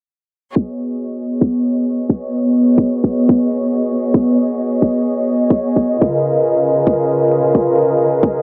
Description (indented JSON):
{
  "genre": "liquid drum and bass",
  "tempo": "176 BPM",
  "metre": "4/4",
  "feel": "straight",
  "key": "B major",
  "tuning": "A4 = 440 Hz",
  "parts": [
    { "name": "clear studio string section", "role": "sustained chords", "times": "0.6-8.4 s", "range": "C#3 to D#5", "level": "-17 LUFS", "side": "equal", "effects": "none" },
    { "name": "electronic kick drum", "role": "drums", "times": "0.6-8.3 s", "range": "none", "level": "-16 LUFS", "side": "equal", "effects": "overdrive, high-pass filter on kick" }
  ],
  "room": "moderate lush hall reverb, RT60 2.1 s",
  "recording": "low-pass filter",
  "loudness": "-16 LUFS",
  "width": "mono",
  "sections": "0.6-8.4 A section",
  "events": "none",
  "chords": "0.6 B69; 6.0 C#13"
}